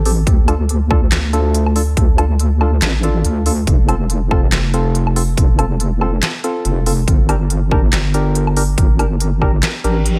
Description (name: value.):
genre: deep dubstep.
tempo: 141 BPM.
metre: 4/4.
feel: swing 56% on 16ths, half-time.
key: unclear.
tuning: A4 = 439 Hz.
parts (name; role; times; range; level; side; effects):
percussive organ stab; stabs; 0.0-10.2 s; C4 to Bb4; -25 LUFS; equal; chorus, dub echo.
deep soft wobble bass; bass; 0.0-10.2 s; F1 to D2; -18 LUFS; equal; chorus.
dubstep drum kit; drums; 0.1-10.2 s; handclaps, hi-hat, snare drum, woodblock; -24 LUFS; equal; none.
electronic kick drum; drums; 0.3-9.5 s; none; -17 LUFS; equal; none.
reverse cymbal; sound effects; 9.9-10.2 s; none; -34 LUFS; equal; none.
room: digital ambience.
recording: none.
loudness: -15 LUFS.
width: mono.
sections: 0.0-10.2 A section.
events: reverse cymbal 9.9-10.2.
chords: 0.3 Dm; 3.7 F; 7.1 Gm.